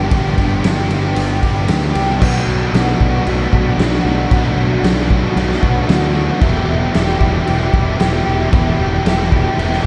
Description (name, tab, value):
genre	rock, shoegaze and dream pop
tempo	114 BPM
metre	4/4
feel	straight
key	unclear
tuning	A4 = 440 Hz
part	biting overdriven guitar	riff	0.0-9.9 s	E2 to G4	-20 LUFS	equal	analog chorus
part	fuzz picked electric bass	bass	0.0-9.8 s	E1 to D2	-20 LUFS	equal	overdrive
part	raw garage drum kit	drums	0.1-9.8 s	crash cymbal, kick drum, ride cymbal, snare drum	-19 LUFS	equal	none
room	wet cathedral reverb, RT60 6.3 s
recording	dreamy mix soaked in reverb, nothing above 10.6 kHz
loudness	-15 LUFS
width	mono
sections	0.0-2.2 A section; 2.2-9.9 B section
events	none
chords	0.0 G; 2.2 Bm; 6.4 Em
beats	| 0.11 0.64 1.16 1.69 | 2.21 2.74 3.27 3.79 | 4.32 4.84 5.37 5.89 | 6.42 6.95 7.47 8.00 | 8.53 9.05 9.58